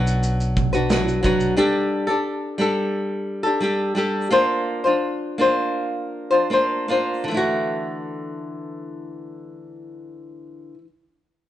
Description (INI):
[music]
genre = acoustic pop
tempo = 76-90 BPM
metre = 4/4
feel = straight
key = D major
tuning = A4 = 442 Hz
[part]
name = flamenco guitar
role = accompaniment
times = 0.0-10.9 s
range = D3 to C5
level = -21 LUFS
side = left 1 dB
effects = none
[part]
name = upright bass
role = bass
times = 0.0-1.5 s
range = B1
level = -24 LUFS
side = equal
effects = none
[part]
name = modern studio drum kit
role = drums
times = 0.1-1.6 s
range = kick drum, shaker, snare drum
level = -24 LUFS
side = right 2 dB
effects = none
[sound]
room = moderate stone room reverb, RT60 1.2 s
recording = band playing live in one room, nothing above 10.3 kHz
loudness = -19 LUFS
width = side -12 dB against mid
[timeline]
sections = 0.0-7.3 A section; 7.3-10.4 B section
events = slowing down 1.6-7.3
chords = 0.0 Bm; 1.6 Gsus2; 4.3 Bbadd9; 7.3 Dadd9